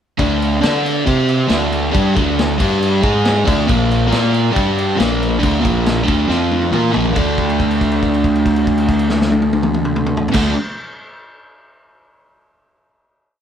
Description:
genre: garage rock duo or trio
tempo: 138 BPM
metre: 4/4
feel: straight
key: D minor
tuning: A4 = 437 Hz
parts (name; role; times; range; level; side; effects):
- crunchy overdriven guitar; riff; 0.2-10.5 s; Bb2 to D5; -15 LUFS; equal; none
- fuzz fingered electric bass; bass; 0.2-10.5 s; Bb1 to D3; -20 LUFS; equal; overdrive, tube saturation
- vintage drum kit; drums; 0.2-10.4 s; crash cymbal, kick drum, snare drum, toms; -20 LUFS; equal; none
room: moderate small room reverb, RT60 0.5 s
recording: band playing live in one room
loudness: -13 LUFS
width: side -9 dB against mid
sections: 0.2-7.2 riff; 7.2-10.6 final chord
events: drum fill 6.3-7.2; held note 7.2-10.4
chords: 0.2 D5; 1.1 C5; 1.5 D5; 2.6 G5; 3.0 G#5; 3.5 D5; 3.7 Bb5; 4.6 G5; 5.0 Bb5; 6.3 F5; 6.7 Bb5; 7.2 D5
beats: | 0.19 0.63 1.07 1.50 | 1.94 2.38 2.81 3.25 | 3.69 4.12 4.56 5.00 | 5.43 5.87 6.30 6.74 | 7.17 7.60 8.03 8.46 | 8.89 9.32 9.75 10.18

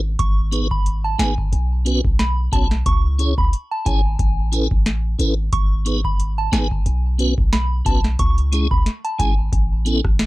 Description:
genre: dancehall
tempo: 90 BPM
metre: 4/4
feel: swing 56% on 16ths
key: C# minor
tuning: A4 = 440 Hz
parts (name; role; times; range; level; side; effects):
- warm 808-style bass; bass; 0.0-10.3 s; G#1 to C#2; -20 LUFS; equal; none
- soft synth bell; melody; 0.2-9.3 s; G#5 to C#6; -26 LUFS; right 2 dB; chorus, ping-pong delay
- booming analog drum machine; drums; 0.2-10.3 s; hi-hat, kick drum, rim click, snare drum; -19 LUFS; equal; none
- tonewheel organ; accompaniment; 0.5-10.0 s; G#3 to C#5; -22 LUFS; right 1 dB; chorus vibrato, fast rotary speaker
room: little or no reverb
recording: none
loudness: -17 LUFS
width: side -19 dB against mid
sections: 0.0-10.3 A section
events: none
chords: 0.2 G#m; 1.5 Bsus2; 2.9 C#m; 4.2 Aadd9; 5.5 G#m; 6.9 Bsus2; 8.2 C#m; 9.5 Aadd9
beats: | 0.19 0.86 1.53 2.19 | 2.86 3.53 4.19 4.86 | 5.53 6.19 6.86 7.53 | 8.19 8.86 9.53 10.19

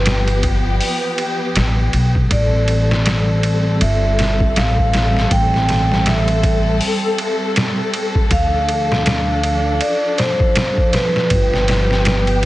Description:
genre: trip hop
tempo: 80 BPM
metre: 4/4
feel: swing 58% on 16ths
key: A minor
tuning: A4 = 440 Hz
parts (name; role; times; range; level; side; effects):
- vibraphone with medium hard mallets; melody; 0.0-12.5 s; B4 to G5; -21 LUFS; right 1 dB; tape echo
- dark symphonic string section; sustained chords; 0.0-12.5 s; F3 to A4; -22 LUFS; left 1 dB; none
- upright bass; bass; 0.0-12.5 s; G1 to D2; -17 LUFS; equal; none
- trip hop sampler-style drum kit; drums; 0.1-12.5 s; hi-hat, kick drum, ride cymbal, snare drum; -19 LUFS; equal; none
room: little or no reverb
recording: heavily compressed radio sound, nothing above 10.4 kHz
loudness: -14 LUFS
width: side -16 dB against mid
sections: 0.0-12.5 A section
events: none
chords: 0.0 G7; 2.3 Am7; 8.3 Dm; 11.3 G7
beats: 0.06 0.81 1.55 | 2.31 3.06 3.81 4.55 | 5.30 6.05 6.80 7.55 | 8.30 9.05 9.80 10.55 | 11.30 12.05

